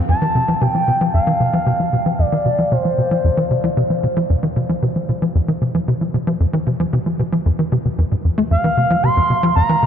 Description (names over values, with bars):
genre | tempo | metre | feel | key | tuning
ambient | 114 BPM | 4/4 | straight | F major | A4 = 440 Hz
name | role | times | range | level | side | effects
expressive synth lead | melody | 0.1-4.0, 8.5-9.9 s | C5 to C6 | -20 LUFS | equal | chorus, tape echo
tight sequencer bass | riff | 0.1-9.9 s | F2 to A3 | -16 LUFS | equal | ensemble chorus, tape echo
room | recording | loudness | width
wet huge ambient reverb, RT60 8.6 s | dark, warm production | -15 LUFS | side -8 dB against mid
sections
0.1-9.9 A section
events
none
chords
0.1 F5